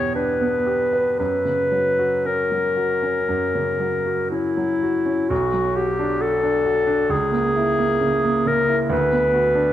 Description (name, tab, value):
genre	classical, romantic duo for clarinet and grand piano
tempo	56-70 BPM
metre	4/4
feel	rubato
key	B minor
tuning	A4 = 440 Hz
part	warm clarinet	melody	0.0-9.7 s	E4 to C#5	-19 LUFS	left 2 dB	none
part	clear grand piano	accompaniment	0.0-9.7 s	B1 to B4	-23 LUFS	right 3 dB	none
room	moderate recital hall reverb, RT60 1.8 s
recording	dark, warm production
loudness	-18 LUFS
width	side -12 dB against mid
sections	0.0-5.3 A section; 5.3-9.7 B section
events	none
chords	0.0 Em7; 1.2 F#; 5.3 Bm; 7.1 A#dim/C#; 8.9 Bm/D